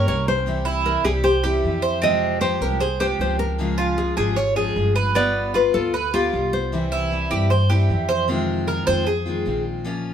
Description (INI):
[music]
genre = latin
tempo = 153 BPM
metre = 4/4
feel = straight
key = F minor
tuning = A4 = 440 Hz
[part]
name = nylon-string guitar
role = melody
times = 0.0-7.7 s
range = F4 to Eb5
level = -23 LUFS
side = left 2 dB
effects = none
[part]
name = picked steel-string acoustic guitar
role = accompaniment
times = 0.0-10.1 s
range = C3 to G4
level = -26 LUFS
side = left 2 dB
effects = none
[part]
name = Cuban tres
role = arpeggios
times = 0.0-9.6 s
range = B3 to Db5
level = -23 LUFS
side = right 3 dB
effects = none
[part]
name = upright bass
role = bass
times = 0.0-10.1 s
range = G1 to G2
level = -24 LUFS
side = equal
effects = none
[sound]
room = moderate studio reverb, RT60 0.8 s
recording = band playing live in one room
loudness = -18 LUFS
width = side -8 dB against mid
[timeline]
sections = 0.0-8.3 A section; 8.3-10.1 B section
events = Cuban tres solo 8.3-10.1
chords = 0.5 C; 2.0 Fmadd9; 3.6 Db; 5.2 G7; 6.7 C; 8.3 Fm7